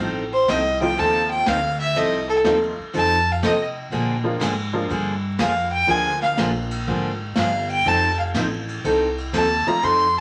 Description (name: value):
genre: country, western swing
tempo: 122 BPM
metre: 4/4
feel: swing 68% on 8ths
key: F mixolydian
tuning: A4 = 440 Hz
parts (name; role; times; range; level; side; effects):
- picked steel-string acoustic guitar; accompaniment; 0.0-10.1 s; D3 to A4; -26 LUFS; equal; none
- upright bass; bass; 0.0-10.2 s; F1 to C3; -30 LUFS; equal; none
- clear fiddle; second line; 0.3-10.2 s; A4 to C6; -22 LUFS; equal; none
- vintage brush drum kit; drums; 0.5-10.0 s; hi-hat, ride cymbal, snare drum; -32 LUFS; equal; none
- honky-tonk upright piano; accompaniment; 0.8-9.8 s; F3 to F4; -30 LUFS; equal; none
room: wet studio ambience, RT60 0.5 s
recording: vinyl crackle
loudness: -21 LUFS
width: mono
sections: 0.0-10.2 A section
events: fiddle solo 0.0-10.2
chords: 0.0 F7; 3.9 Bb7; 7.9 F7